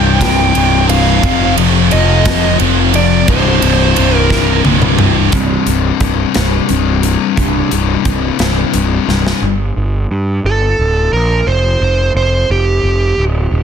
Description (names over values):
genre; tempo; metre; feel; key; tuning
quiet-loud alternative rock; 59 BPM (dotted quarters); 6/8; straight; unclear; A4 = 440 Hz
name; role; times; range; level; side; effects
dark smooth lead guitar; melody; 0.0-4.6, 10.5-13.2 s; G4 to G5; -16 LUFS; right 2 dB; overdrive, tape echo
heavy high-gain guitar; riff; 0.0-5.3 s; C2 to F3; -17 LUFS; right 16 dB; distortion
thick fuzz guitar; riff; 0.0-9.4 s; C2 to F3; -15 LUFS; left 12 dB; distortion
fuzz picked electric bass; bass; 0.0-13.6 s; C1 to G2; -14 LUFS; right 1 dB; overdrive
big rock drum kit; drums; 0.2-9.4 s; hi-hat, kick drum, ride cymbal, snare drum, toms; -17 LUFS; right 1 dB; soft clipping on kick
electric guitar through a small old amp; arpeggios; 5.3-9.4 s; C2 to C3; -22 LUFS; right 5 dB; phaser
room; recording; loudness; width
little or no reverb; dense, heavily limited modern master; -10 LUFS; side -7 dB against mid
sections
0.0-5.3 A section; 5.3-9.4 B section; 9.4-13.6 C section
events
drum fill 4.3-5.3, 9.1-9.4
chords
0.0 C5; 1.2 F5; 3.3 C5; 9.4 Gm; 11.5 Fsus2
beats
0.20 | 1.23 2.25 | 3.27 4.30 | 5.32 6.34 | 7.37 8.39 | 9.42 10.45 | 11.47 12.50 | 13.53